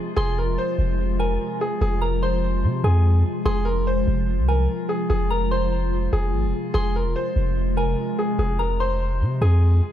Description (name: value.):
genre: hip hop.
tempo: 146 BPM.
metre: 4/4.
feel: half-time.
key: F minor.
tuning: A4 = 440 Hz.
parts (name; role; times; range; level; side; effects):
warm upright piano; melody; 0.0-9.9 s; Ab4 to C5; -27 LUFS; equal; tape echo.
glassy FM pad; sustained chords; 0.0-9.9 s; C3 to F4; -27 LUFS; left 1 dB; ensemble chorus, built-in reverb.
soft synth bell; second line; 0.2-9.6 s; Ab5 to C6; -33 LUFS; left 1 dB; chorus, phaser, tape echo.
long sustained 808-style bass; bass; 0.2-9.8 s; E1 to C3; -21 LUFS; equal; none.
room: digital ambience.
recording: dark, warm production.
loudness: -20 LUFS.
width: side -11 dB against mid.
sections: 0.0-9.9 A section.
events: none.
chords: 0.0 Fm.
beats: | 0.17 0.58 0.99 1.40 | 1.81 2.22 2.63 3.05 | 3.46 3.87 4.28 4.69 | 5.10 5.51 5.92 6.33 | 6.74 7.16 7.57 7.98 | 8.39 8.80 9.21 9.62.